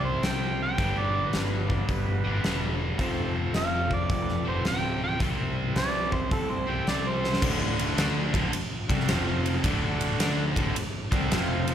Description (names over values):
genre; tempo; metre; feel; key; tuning
blues rock power trio and southern rock; 108 BPM; 4/4; swing 66% on 8ths; unclear; A4 = 438 Hz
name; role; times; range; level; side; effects
overdriven harmonica; melody; 0.0-7.4 s; A4 to G5; -31 LUFS; right 2 dB; slapback echo, tape echo
bright tonewheel organ; sustained chords; 0.0-11.7 s; B3 to F5; -37 LUFS; right 3 dB; overdrive, slow rotary speaker
distorted electric guitar; riff; 0.0-11.7 s; D2 to D4; -30 LUFS; equal; distortion, slapback echo
growling fingered electric bass; bass; 0.0-11.7 s; D1 to D2; -31 LUFS; equal; overdrive
huge arena drum kit; drums; 0.2-11.7 s; crash cymbal, hi-hat, kick drum, ride cymbal, snare drum; -29 LUFS; equal; none
room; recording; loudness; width
studio ambience; live gig heard through the venue's PA, club reverb; -24 LUFS; side -9 dB against mid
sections
0.0-7.4 A section; 7.4-11.7 B section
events
drum fill 7.1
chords
0.0 C; 0.8 G; 3.0 F; 5.2 C; 7.4 D; 9.1 F5; 9.6 D